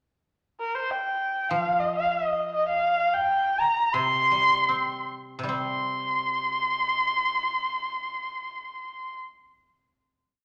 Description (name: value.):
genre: chinese traditional, Chinese chamber ensemble.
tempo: 67-101 BPM.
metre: 2/4.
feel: rubato.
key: C yu mode.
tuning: A4 = 439 Hz.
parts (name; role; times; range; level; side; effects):
dark erhu; melody; 0.6-9.2 s; Bb4 to C6; -26 LUFS; equal; none.
guzheng; accompaniment; 1.5-10.4 s; C3 to C4; -37 LUFS; equal; none.
room: wet recital hall reverb, RT60 1.3 s.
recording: none.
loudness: -26 LUFS.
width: mono.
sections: 0.3-5.5 A section; 5.5-9.0 final chord.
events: slowing down 2.7-5.5.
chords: none.